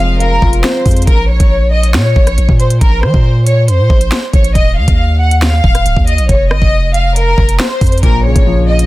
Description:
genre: hip hop, drill.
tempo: 138 BPM.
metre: 4/4.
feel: half-time.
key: Bb minor.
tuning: A4 = 440 Hz.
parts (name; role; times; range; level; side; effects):
warm studio violin section; melody; 0.0-8.9 s; Bb4 to Gb5; -16 LUFS; equal; digital delay.
dark concert grand piano; accompaniment; 0.0-1.1, 8.0-8.9 s; Bb2 to F5; -17 LUFS; left 3 dB; none.
long sustained 808-style bass; bass; 0.0-8.9 s; Db1 to F3; -12 LUFS; equal; none.
drill drum kit; drums; 0.2-8.9 s; finger snaps, hi-hat, kick drum, rim click, snare drum; -12 LUFS; equal; none.
room: studio reverb.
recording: dense, heavily limited modern master.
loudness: -8 LUFS.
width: side -18 dB against mid.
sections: 0.0-1.1 A section; 1.1-8.9 A section.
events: none.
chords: 0.0 Fm; 1.1 Bbm; 4.6 Eb5; 6.3 F5; 8.0 Bbm.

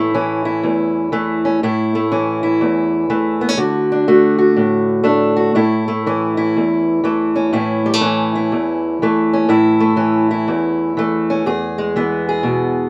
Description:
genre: blues.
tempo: 122 BPM.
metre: 4/4.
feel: swing 64% on 8ths.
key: A major.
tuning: A4 = 440 Hz.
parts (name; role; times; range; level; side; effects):
fingerpicked steel-string acoustic guitar; solo; 0.0-12.9 s; E2 to G#4; -16 LUFS; equal; none.
room: moderate studio reverb, RT60 0.6 s.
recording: rough home demo mix.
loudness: -16 LUFS.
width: mono.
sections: 0.0-12.9 A section.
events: none.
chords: 0.0 A; 3.6 D; 5.5 A; 11.5 E.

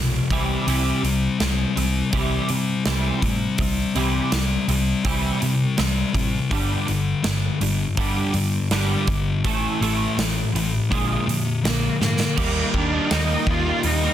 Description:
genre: quiet-loud alternative rock.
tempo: 82 BPM.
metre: 4/4.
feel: straight.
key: unclear.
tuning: A4 = 439 Hz.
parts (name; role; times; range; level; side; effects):
twelve-string electric guitar; arpeggios; 0.0-14.1 s; G2 to Eb4; -28 LUFS; right 6 dB; ensemble chorus, slapback echo.
thick fuzz guitar; riff; 0.0-14.1 s; F2 to Eb4; -23 LUFS; left 4 dB; distortion.
hollow-body short-scale picked electric bass; bass; 0.0-14.1 s; G1 to C3; -25 LUFS; right 1 dB; none.
big rock drum kit; drums; 0.3-14.0 s; crash cymbal, hi-hat, kick drum, snare drum; -26 LUFS; right 1 dB; none.
clear cello; melody; 11.6-14.1 s; Bb3 to F4; -25 LUFS; right 2 dB; slapback echo.
room: light reverb, small room ambience.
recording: dense, heavily limited modern master.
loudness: -19 LUFS.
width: side -11 dB against mid.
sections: 0.0-12.4 A section; 12.4-14.1 B section.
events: drum fill 12.0-12.4.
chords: 0.3 C; 6.5 G5; 9.4 A5; 10.9 Bb7; 12.4 Eb.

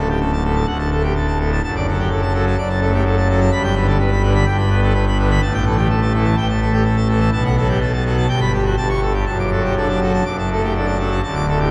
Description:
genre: classical, organ toccata.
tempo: 126 BPM.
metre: 4/4.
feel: straight.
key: D major.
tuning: A4 = 440 Hz.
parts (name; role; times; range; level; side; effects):
pipe organ, full organ; solo; 0.0-11.7 s; D1 to D6; -18 LUFS; equal; none.
room: wet cathedral reverb, RT60 5.4 s.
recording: heard from further back in the room.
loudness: -18 LUFS.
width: mono.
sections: 0.0-11.2 A section.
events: none.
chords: 0.0 D; 1.6 D/F#; 3.5 G; 5.4 A5; 7.3 B5; 8.3 Gmaj7; 8.8 A7/G; 9.3 D/F#.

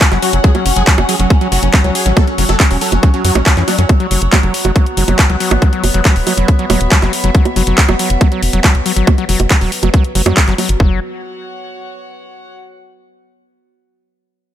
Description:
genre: psychedelic trance.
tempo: 139 BPM.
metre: 4/4.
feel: straight.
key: unclear.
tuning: A4 = 441 Hz.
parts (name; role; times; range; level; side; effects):
supersaw stab; melody; 0.0-3.8 s; F#3 to A4; -21 LUFS; equal; phaser, sidechain pumping, dub echo.
overtone-sweeping drone; sustained chords; 0.0-10.8 s; F#3 to C#4; -22 LUFS; equal; chorus, built-in reverb, sidechain pumping.
drum and bass drum kit; drums; 0.0-10.8 s; bongos, handclaps, hi-hat; -16 LUFS; right 2 dB; overdrive, small room reverb.
electronic kick drum; drums; 0.0-10.9 s; none; -10 LUFS; equal; overdrive, small room reverb.
warm chamber string section; texture; 0.0-12.5 s; F#4 to F#5; -28 LUFS; left 1 dB; sidechain pumping.
overdriven acid bass; riff; 0.1-11.0 s; E3 to F#4; -20 LUFS; moving between left 8 dB and right 7 dB; auto-pan, sidechain pumping, dub echo.
tight sequencer bass; bass; 0.1-11.0 s; E1 to F#2; -15 LUFS; equal; none.
room: digital ambience.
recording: none.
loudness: -10 LUFS.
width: side -11 dB against mid.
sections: 0.0-10.8 A section; 10.8-12.5 B section.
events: fade-out on string section 0.0-10.8; filter sweep on analog synth bass 0.0-10.8; filter sweep on acid bass 0.0-10.8.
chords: 0.0 F#5.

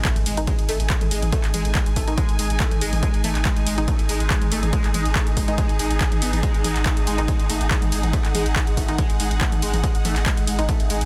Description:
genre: driving peak-time techno.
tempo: 141 BPM.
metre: 4/4.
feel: straight.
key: unclear.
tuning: A4 = 440 Hz.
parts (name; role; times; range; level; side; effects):
overdriven synth lead; riff; 0.0-11.0 s; G#3 to G#4; -32 LUFS; equal; phaser, tube saturation, analog chorus, sidechain pumping, delay.
saturated sub bass; bass; 0.0-11.1 s; G#1; -27 LUFS; equal; overdrive, sidechain pumping, low-pass filter.
electronic kick drum; drums; 0.0-10.8 s; none; -25 LUFS; equal; none.
techno drum kit; drums; 0.0-11.1 s; handclaps, hi-hat, ride cymbal, toms; -29 LUFS; equal; overdrive, sidechain pumping on hats, sidechain pumping on cymbals, sidechain pumping on toms.
impact; sound effects; 0.0-1.3 s; none; barely audible; none; none.
warm studio string section; texture; 0.0-11.1 s; D#4 to G#5; -32 LUFS; equal; sidechain pumping.
filtered dub chord stab; stabs; 0.4-10.7 s; D#3 to D#4; -33 LUFS; equal; chorus, vintage 12-bit sampler grit, sidechain pumping, delay.
room: little or no reverb.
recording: dense, heavily limited modern master.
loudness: -21 LUFS.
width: mono.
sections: 0.0-11.1 A section.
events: impact 0.0-1.3.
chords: 0.0 G#5.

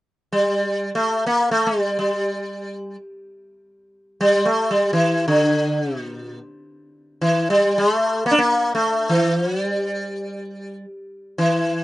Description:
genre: indian classical.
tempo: free time.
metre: none.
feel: none.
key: G raga shivaranjani.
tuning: A4 = 440 Hz.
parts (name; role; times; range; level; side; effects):
sitar; solo; 0.3-11.8 s; D3 to D4; -18 LUFS; equal; none.
room: light reverb.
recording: rough home demo mix, nothing above 10.3 kHz.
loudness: -18 LUFS.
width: side -17 dB against mid.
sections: 0.0-11.8 A section.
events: none.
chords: none.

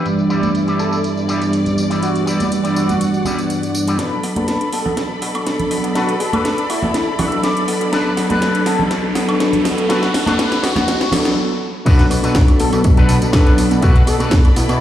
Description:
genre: nu-disco, nu disco.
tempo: 122 BPM.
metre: 4/4.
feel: straight.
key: B minor.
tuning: A4 = 443 Hz.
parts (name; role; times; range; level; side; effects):
mellow synth brass; accompaniment; 0.0-13.9 s; G2 to A4; -18 LUFS; right 1 dB; chorus, vintage 12-bit sampler grit, slapback echo.
warm studio string section; sustained chords; 0.0-14.8 s; G3 to B5; -26 LUFS; left 1 dB; sidechain pumping.
electric guitar with an envelope filter; riff; 0.0-14.5 s; G3 to F#5; -24 LUFS; left 2 dB; analog chorus, low-pass filter, slapback echo.
house drum kit; drums; 0.1-14.8 s; crash cymbal, hi-hat, snare drum, tambourine, woodblock; -23 LUFS; equal; studio reverb.
congas; percussion; 0.4-11.2 s; none; -24 LUFS; right 2 dB; none.
wide unison lead; melody; 0.8-14.8 s; E4 to A4; -24 LUFS; left 1 dB; lush chorus, tape echo.
fat analog bass; bass; 4.0-14.8 s; B1 to B2; -22 LUFS; equal; high-pass filter.
riser; sound effects; 6.6-11.4 s; none; -28 LUFS; equal; none.
electronic kick drum; drums; 11.9-14.4 s; none; -12 LUFS; equal; studio reverb.
room: wet echo chamber reverb, RT60 1.9 s.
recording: played on a big sound system in a bare room, large studio reverb, low-pass filter.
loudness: -14 LUFS.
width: side -11 dB against mid.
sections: 0.0-4.0 A section; 4.0-11.9 B section; 11.9-14.8 C section.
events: filter sweep 0.0-4.0; build-up 4.0-11.9; drum fill 4.0-11.4; filter sweep on clean electric guitar 4.0-11.9; filter sweep on analog polysynth 4.0-11.9; riser 6.6-11.4; clean electric guitar fill 6.9-7.9; stop 11.4-11.9; drop 11.9-14.8.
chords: 0.1 Em7/G; 4.0 Bm7.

